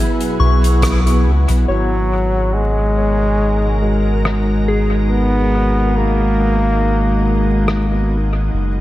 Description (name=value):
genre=ambient dub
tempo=70 BPM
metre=4/4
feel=swing 56% on 16ths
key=G# minor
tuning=A4 = 439 Hz
part: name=soft additive organ-like pad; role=sustained chords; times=0.0-8.8 s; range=B2 to F#5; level=-22 LUFS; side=equal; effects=ensemble chorus, built-in reverb
part: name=mellow tonewheel organ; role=stabs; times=0.0-8.2 s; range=G#3 to A#4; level=-25 LUFS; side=right 2 dB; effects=slow rotary speaker, low-pass filter, dub echo
part: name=wind-like tuned noise texture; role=texture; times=0.0-1.7 s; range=B3 to B4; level=-28 LUFS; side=equal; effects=built-in reverb
part: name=soft-mallet drum kit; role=drums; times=0.2-7.9 s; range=hi-hat, rim click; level=-26 LUFS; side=left 1 dB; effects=low-pass filter on hats, low-pass filter on toms, low-pass filter on snare, low-pass filter on room, dub echo
part: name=soft synth bell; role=arpeggios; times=0.4-8.6 s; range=G#4 to C#6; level=-27 LUFS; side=left 3 dB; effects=chorus, phaser, low-pass filter, dub echo
part: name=soft dub sub bass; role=bass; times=0.4-8.8 s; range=F#1 to C#2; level=-16 LUFS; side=equal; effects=none
part: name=electronic kick drum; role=drums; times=0.8-1.0 s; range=none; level=-21 LUFS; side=equal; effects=none
part: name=clear trombone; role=melody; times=1.7-8.1 s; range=F#3 to B3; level=-20 LUFS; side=equal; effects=dub echo
room=light reverb, studio reverb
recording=vinyl crackle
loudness=-13 LUFS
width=side -15 dB against mid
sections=0.0-1.7 A section; 1.7-8.8 B section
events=band accent 0.8-1.3; filter sweep on synth bell 1.7-8.8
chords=0.0 F#7sus4; 1.7 G#m7